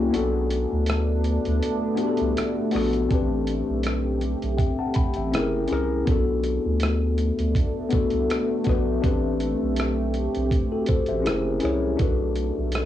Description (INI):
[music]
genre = lo-fi hip hop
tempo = 81 BPM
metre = 4/4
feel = swing 55% on 16ths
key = unclear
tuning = A4 = 441 Hz
[part]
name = mellow tine electric piano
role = accompaniment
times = 0.0-12.9 s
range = A#3 to B5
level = -25 LUFS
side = left 4 dB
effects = medium stereo tremolo, cassette tape, low-pass filter
[part]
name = deep dark ambient pad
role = sustained chords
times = 0.0-12.9 s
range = A3 to G4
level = -30 LUFS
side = right 2 dB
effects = chorus, built-in reverb, low-pass filter, cassette tape
[part]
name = saturated sub bass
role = bass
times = 0.0-12.9 s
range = F#1 to D2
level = -26 LUFS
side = right 1 dB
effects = none
[part]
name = dusty soul sampler-style drum kit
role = drums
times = 0.1-12.9 s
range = hi-hat, kick drum, rim click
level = -26 LUFS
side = right 1 dB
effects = cassette tape
[sound]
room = light reverb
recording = home recording on cassette, small room ambience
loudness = -21 LUFS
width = side -12 dB against mid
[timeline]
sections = 0.0-12.9 A section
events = break 0.0-3.1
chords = 0.1 Bm7; 3.1 Am11; 5.3 F#7; 6.1 Bm7; 9.0 Am11; 11.3 F#7; 12.0 Bm7